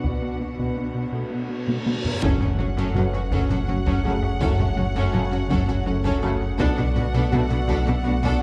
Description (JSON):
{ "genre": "cinematic, hybrid orchestral and electronic film score", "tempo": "55 BPM (dotted quarters)", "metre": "6/8", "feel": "straight", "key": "F# minor", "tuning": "A4 = 441 Hz", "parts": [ { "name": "rich symphonic violin section", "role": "melody", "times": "0.0-8.4 s", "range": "F#5", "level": "-37 LUFS", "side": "equal", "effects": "low-pass filter" }, { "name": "clear symphonic violin section", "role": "second line", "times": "0.0-8.4 s", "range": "F#4 to A4", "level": "-39 LUFS", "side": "equal", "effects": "none" }, { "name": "rich symphonic viola section", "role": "accompaniment", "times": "0.0-8.4 s", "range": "C#4 to D4", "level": "-34 LUFS", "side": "equal", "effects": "low-pass filter" }, { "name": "hollow soft pad", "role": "sustained chords", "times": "0.0-8.4 s", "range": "A3 to D5", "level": "-34 LUFS", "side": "equal", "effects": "chorus, low-pass filter" }, { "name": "glassy wavetable pluck", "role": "arpeggios", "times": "0.0-8.3 s", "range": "F#3 to B4", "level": "-37 LUFS", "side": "equal", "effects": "none" }, { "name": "rubbery square bass", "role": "riff", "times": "0.0-8.3 s", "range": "F#2 to B3", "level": "-31 LUFS", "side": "equal", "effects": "low-pass filter" }, { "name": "rich studio cello section", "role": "bass", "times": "0.0-8.3 s", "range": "F#2 to B2", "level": "-31 LUFS", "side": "equal", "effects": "none" }, { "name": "taiko ensemble", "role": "drums", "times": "0.0-8.4 s", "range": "none", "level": "-30 LUFS", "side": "equal", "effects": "none" }, { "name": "reverse cymbal and impact", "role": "sound effects", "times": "1.1-4.4 s", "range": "none", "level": "-37 LUFS", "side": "equal", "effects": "none" }, { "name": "felt-muted upright piano", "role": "texture", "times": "0.0-8.4 s", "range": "A3 to B4", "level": "-42 LUFS", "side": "equal", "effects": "none" }, { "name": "warm studio double bass section", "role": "bass", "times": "2.2-8.1 s", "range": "F#1 to B1", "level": "-32 LUFS", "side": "equal", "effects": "none" }, { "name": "warm sub bass", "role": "bass", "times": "2.2-8.4 s", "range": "F#1 to B1", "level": "-30 LUFS", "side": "equal", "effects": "none" }, { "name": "mellow French horn section", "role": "sustained chords", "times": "2.9-7.4 s", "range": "C#4 to F#4", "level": "-37 LUFS", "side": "equal", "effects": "none" }, { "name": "bright trombone section", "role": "sustained chords", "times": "3.0-7.5 s", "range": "B2 to A3", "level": "-39 LUFS", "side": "equal", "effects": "none" } ], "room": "wet scoring stage reverb, RT60 1.8 s", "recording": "dark, warm production", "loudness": "-23 LUFS", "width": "mono", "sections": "0.0-2.2 A section; 2.2-8.4 B section", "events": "filter sweep 0.0-2.2; reverse cymbal 1.1-2.2; drum fill 1.7-2.2; impact 2.2-4.4", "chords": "0.0 Bm; 2.2 F#m; 6.6 Bm7", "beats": "| 0.05 1.14 | 2.23 3.32 | 4.41 5.50 | 6.59 7.68" }